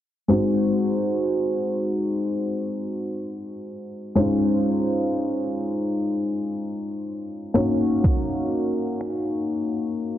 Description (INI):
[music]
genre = contemporary R&B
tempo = 62 BPM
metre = 4/4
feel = swing 54% on 16ths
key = unclear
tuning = A4 = 437 Hz
[part]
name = felt-muted upright piano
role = accompaniment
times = 0.3-10.2 s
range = Ab3 to Db5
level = -22 LUFS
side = left 1 dB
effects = none
[part]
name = smooth R&B drum kit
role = drums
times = 8.0-9.3 s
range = finger snaps, kick drum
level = -21 LUFS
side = equal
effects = soft clipping on snare
[sound]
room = light reverb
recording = dense, heavily limited modern master, low-pass filter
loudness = -22 LUFS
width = side -12 dB against mid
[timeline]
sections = 0.3-10.2 A section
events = filter sweep 0.3-10.2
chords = 0.3 Ab7; 4.2 Dbmaj9; 7.6 Gb6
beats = | 0.30 1.27 2.23 3.20 | 4.17 5.14 6.11 7.07 | 8.04 9.01 9.98